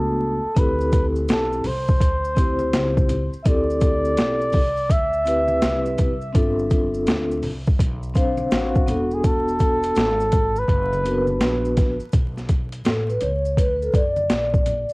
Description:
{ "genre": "hip hop, jazz-hop", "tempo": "83 BPM", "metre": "4/4", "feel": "swing 66% on 16ths", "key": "B minor", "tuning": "A4 = 440 Hz", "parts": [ { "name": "breathy flugelhorn", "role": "melody", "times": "0.0-11.3 s", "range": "F#4 to E5", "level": "-24 LUFS", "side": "equal", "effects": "cassette tape, tape echo" }, { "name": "vibraphone with soft mallets", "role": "accompaniment", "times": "0.0-14.9 s", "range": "A3 to F5", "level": "-23 LUFS", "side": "left 1 dB", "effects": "cassette tape" }, { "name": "upright bass", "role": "bass", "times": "0.0-14.9 s", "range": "E1 to F#2", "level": "-27 LUFS", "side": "equal", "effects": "none" }, { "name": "boom bap sampler-style drum kit", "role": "drums", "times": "0.6-14.9 s", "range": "hi-hat, kick drum, snare drum", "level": "-20 LUFS", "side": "equal", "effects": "overdrive, cassette tape" }, { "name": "maracas and congas", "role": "percussion", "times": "0.6-14.9 s", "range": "none", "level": "-36 LUFS", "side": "equal", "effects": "none" } ], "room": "little or no reverb", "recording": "home recording on cassette, vinyl crackle", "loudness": "-18 LUFS", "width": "side -25 dB against mid", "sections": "0.0-12.1 A section; 12.1-14.9 B section", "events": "vibraphone solo 12.1-14.9", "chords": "0.0 E9sus4 (rootless); 0.6 D9sus4; 6.3 G9sus4; 8.9 E9sus4; 12.1 Bm9" }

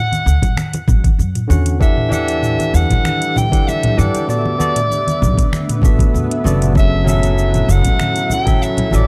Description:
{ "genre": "sunset chillout", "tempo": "97 BPM", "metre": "4/4", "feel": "straight", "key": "E dorian", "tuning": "A4 = 435 Hz", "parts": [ { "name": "warm soprano saxophone", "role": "melody", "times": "0.0-9.1 s", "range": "D5 to G5", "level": "-23 LUFS", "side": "equal", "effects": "analog delay" }, { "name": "smooth R&B drum kit", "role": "drums", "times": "0.1-9.1 s", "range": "cabasa, finger snaps, hi-hat, toms", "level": "-25 LUFS", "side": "equal", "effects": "none" }, { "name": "congas", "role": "percussion", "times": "0.1-9.0 s", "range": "none", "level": "-24 LUFS", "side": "equal", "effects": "none" }, { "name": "upright bass", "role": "bass", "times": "0.3-9.0 s", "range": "F#1 to G2", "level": "-18 LUFS", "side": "equal", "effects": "none" }, { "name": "electronic kick drum", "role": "drums", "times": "0.4-8.6 s", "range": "none", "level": "-17 LUFS", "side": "equal", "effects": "none" }, { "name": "barky tine electric piano", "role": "accompaniment", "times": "1.5-9.1 s", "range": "D3 to F#5", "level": "-23 LUFS", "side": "equal", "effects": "none" }, { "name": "shimmering ambient pad", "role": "sustained chords", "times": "2.8-9.1 s", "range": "C#3 to E5", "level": "-28 LUFS", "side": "equal", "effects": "chorus, built-in reverb" } ], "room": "little or no reverb", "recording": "dry, gritty hardware recording", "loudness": "-15 LUFS", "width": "mono", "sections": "0.0-9.1 A section", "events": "none", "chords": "0.0 Dmaj9; 1.8 Em11; 4.3 Bm7; 6.8 F#m7" }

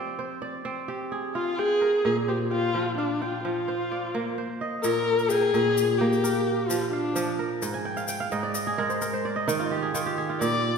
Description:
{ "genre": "west african traditional, West African string and xylophone music", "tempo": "86 BPM (dotted quarters)", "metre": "12/8", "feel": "straight", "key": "unclear", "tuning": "A4 = 440 Hz", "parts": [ { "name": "kora", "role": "arpeggios", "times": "0.0-10.8 s", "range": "Ab2 to Ab5", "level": "-27 LUFS", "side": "right 2 dB", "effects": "none" }, { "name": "dark viola", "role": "melody", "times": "1.4-10.8 s", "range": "D4 to D5", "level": "-25 LUFS", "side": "left 2 dB", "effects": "none" }, { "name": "tube shaker", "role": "percussion", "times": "4.8-10.5 s", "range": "none", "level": "-37 LUFS", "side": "left 7 dB", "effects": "none" } ], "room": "wet scoring stage reverb, RT60 1.9 s", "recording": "recorded in a church or concert hall", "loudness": "-24 LUFS", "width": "side -6 dB against mid", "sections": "0.0-4.8 A section; 4.8-10.8 B section", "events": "kora fill 7.7-10.4", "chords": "0.0 Fm; 2.0 Bb; 4.8 Bb5; 7.6 Ab5" }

